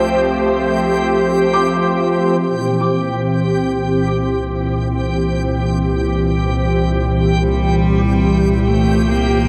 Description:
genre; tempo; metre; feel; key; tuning
ambient; free time; none; none; C mixolydian; A4 = 442 Hz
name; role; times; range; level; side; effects
warm analog pad; sustained chords; 0.0-9.5 s; Bb2 to C5; -18 LUFS; equal; lush chorus
felt-muted upright piano; arpeggios; 0.0-2.5 s; E5 to D6; -26 LUFS; equal; analog delay
warm sub bass; bass; 0.0-9.5 s; C2; -25 LUFS; equal; none
backwards swelling texture; texture; 0.0-9.5 s; G4 to G5; -27 LUFS; equal; built-in reverb
rich cello; melody; 7.4-9.5 s; G3 to Bb3; -21 LUFS; equal; none
room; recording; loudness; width
wet lush hall reverb, RT60 2.9 s; dreamy mix soaked in reverb; -16 LUFS; mono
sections
0.0-2.4 A section; 2.4-9.5 B section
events
fade-in on sub bass 2.4-9.5; filter sweep on analog synth pad 2.4-9.5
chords
0.0 Fadd9/C; 2.4 C7

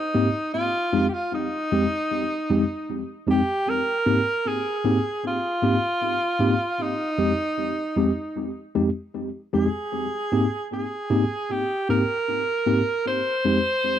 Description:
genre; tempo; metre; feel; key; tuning
reggae; 77 BPM; 4/4; straight; Ab major; A4 = 440 Hz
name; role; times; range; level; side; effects
clear tenor saxophone; melody; 0.0-14.0 s; Eb4 to C5; -24 LUFS; right 1 dB; tape echo
tine electric piano; accompaniment; 0.1-13.6 s; F2 to G4; -23 LUFS; left 1 dB; overdrive, fast stereo tremolo, tape echo
room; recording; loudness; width
moderate studio reverb, RT60 0.6 s; dry, close 1970s-style studio recording; -21 LUFS; side -10 dB against mid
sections
0.0-14.0 A section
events
none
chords
0.0 Abmaj7; 0.5 Fm9; 3.7 Abmaj7; 6.8 Fm9; 9.9 Abmaj7; 13.1 Fm9

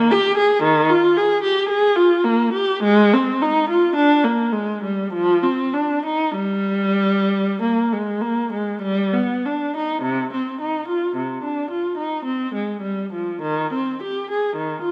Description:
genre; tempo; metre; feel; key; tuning
classical, baroque-style suite movement for unaccompanied viola; 47-57 BPM; 3/4; rubato; C minor; A4 = 440 Hz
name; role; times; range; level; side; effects
warm viola; solo; 0.0-14.9 s; C3 to Ab4; -20 LUFS; equal; none
room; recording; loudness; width
moderate recital hall reverb, RT60 1.8 s; none; -20 LUFS; mono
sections
0.0-10.0 A section; 10.0-14.9 A section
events
none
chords
none

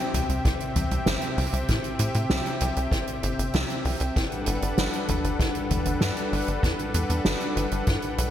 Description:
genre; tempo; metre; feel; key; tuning
synthwave; 97 BPM; 4/4; straight; G major; A4 = 440 Hz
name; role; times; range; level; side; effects
warm analog pad; sustained chords; 0.0-8.3 s; C3 to G5; -29 LUFS; left 1 dB; chorus, sidechain pumping
tight sequencer bass; bass; 0.1-8.3 s; G1 to A2; -27 LUFS; equal; sidechain pumping
soft-mallet drum kit; drums; 0.1-8.3 s; hi-hat, snare drum, toms; -29 LUFS; right 1 dB; small room ambience, gated reverb
kick drum; drums; 0.5-8.0 s; none; -28 LUFS; equal; small room ambience, gated reverb
room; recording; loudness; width
moderate lush hall reverb, RT60 2.7 s; bright 1980s-style digital production; -23 LUFS; side -11 dB against mid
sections
0.0-8.3 A section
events
none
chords
0.0 C; 4.2 Gmaj7

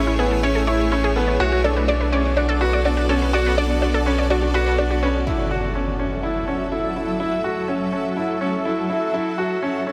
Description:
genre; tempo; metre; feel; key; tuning
piano and strings electronica; 124 BPM; 4/4; straight; F# minor; A4 = 439 Hz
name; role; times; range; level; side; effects
granular cloud pad; sustained chords; 0.0-9.9 s; F#3 to F#5; -28 LUFS; equal; built-in reverb
unison pluck; arpeggios; 0.0-5.1 s; E4 to D5; -29 LUFS; equal; delay
clear grand piano; riff; 0.0-9.9 s; B3 to F#4; -24 LUFS; equal; delay
warm sub bass; bass; 0.0-5.2 s; A1 to B1; -24 LUFS; equal; none
impact; sound effects; 5.3-7.2 s; none; -32 LUFS; equal; none
room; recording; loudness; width
moderate huge ambient reverb, RT60 6.2 s; none; -21 LUFS; mono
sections
0.0-5.3 A section; 5.3-9.9 B section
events
drop 0.0-5.3; impact 5.3-7.2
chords
0.0 Amaj7; 1.4 Bm7; 5.3 F#m7

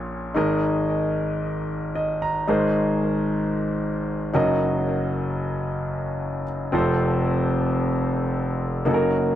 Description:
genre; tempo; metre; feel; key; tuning
pop; 113 BPM; 4/4; straight; unclear; A4 = 440 Hz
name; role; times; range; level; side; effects
clear concert grand piano; solo; 0.0-9.4 s; F1 to Bb5; -21 LUFS; equal; tape echo
room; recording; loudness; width
moderate booth ambience, RT60 0.2 s; dry, close 1970s-style studio recording; -21 LUFS; side -11 dB against mid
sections
0.0-2.5 A section; 2.5-9.4 B section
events
grand piano fill 1.7-2.5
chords
0.4 Absus2; 2.5 Abadd9; 4.3 Ebm/Gb; 6.7 F

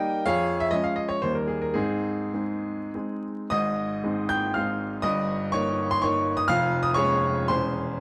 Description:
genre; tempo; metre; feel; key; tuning
classical, romantic triple-time dance for piano with dotted rhythms; 95-140 BPM; 3/4; rubato; Ab major; A4 = 438 Hz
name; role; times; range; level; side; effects
clear baby grand piano; solo; 0.0-8.0 s; Fb1 to G6; -26 LUFS; equal; none
room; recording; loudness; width
moderate recital hall reverb, RT60 1.4 s; close, detailed microphones, vinyl crackle; -26 LUFS; mono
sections
0.0-3.5 A section; 3.5-8.0 B section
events
none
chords
0.3 Db/F; 1.2 Eb; 1.8 Ab; 5.0 Eb/G; 6.5 Db/F; 7.5 Dbm/Fb

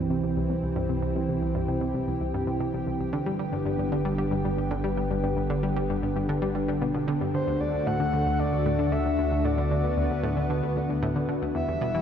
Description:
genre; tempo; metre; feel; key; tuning
ambient, sequencer-driven space music; 114 BPM; 4/4; straight; unclear; A4 = 439 Hz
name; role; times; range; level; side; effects
lush unison pad; sustained chords; 0.0-12.0 s; D3 to G4; -27 LUFS; equal; chorus
analog pluck; riff; 0.0-12.0 s; C2 to G3; -30 LUFS; equal; chorus, ping-pong delay
round analog bass; bass; 0.0-12.0 s; E1 to D2; -33 LUFS; equal; tube saturation
breathy flute-like synth lead; melody; 7.3-12.0 s; C5 to F#5; -30 LUFS; left 1 dB; chorus, ping-pong delay
room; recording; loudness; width
wet cathedral reverb, RT60 5.8 s; in a vast, echoing space; -24 LUFS; side -8 dB against mid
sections
0.0-12.0 A section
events
none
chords
0.0 C; 3.1 G; 7.3 D

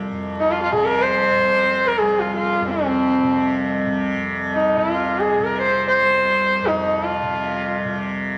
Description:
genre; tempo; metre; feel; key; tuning
indian classical, Hindustani; free time; none; none; C raga malkauns; A4 = 440 Hz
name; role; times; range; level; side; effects
tanpura; drone; 0.0-8.4 s; C2 to C3; -26 LUFS; equal; none
dark sarangi; melody; 0.4-8.0 s; C4 to C5; -20 LUFS; equal; none
room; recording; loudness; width
moderate studio reverb, RT60 0.8 s; vinyl crackle; -20 LUFS; mono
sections
0.0-4.1 A section; 4.1-8.4 A section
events
none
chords
none

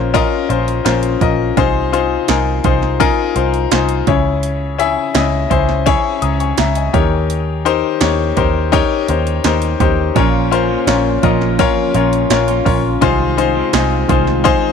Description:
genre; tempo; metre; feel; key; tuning
piano-driven pop; 84 BPM; 4/4; straight; Ab major; A4 = 441 Hz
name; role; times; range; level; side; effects
bright upright piano; accompaniment; 0.0-14.7 s; Bb2 to Eb6; -15 LUFS; left 9 dB; none
vintage muted picked electric bass; bass; 0.0-14.5 s; Bb1 to Eb2; -19 LUFS; right 2 dB; none
punchy analog drum machine; drums; 0.1-14.6 s; hi-hat, kick drum, snare drum; -19 LUFS; right 6 dB; overdrive
clean electric guitar; riff; 10.2-14.7 s; Eb3 to F4; -21 LUFS; right 19 dB; spring reverb
room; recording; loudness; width
light reverb; 1960s-style stereo with parts hard left and right; -12 LUFS; side -6 dB against mid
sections
0.0-14.7 A section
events
none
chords
0.0 Bbm; 1.6 Ab6/C; 4.1 Dbm; 6.9 Eb7; 10.2 Bbm; 13.0 Ab6/C

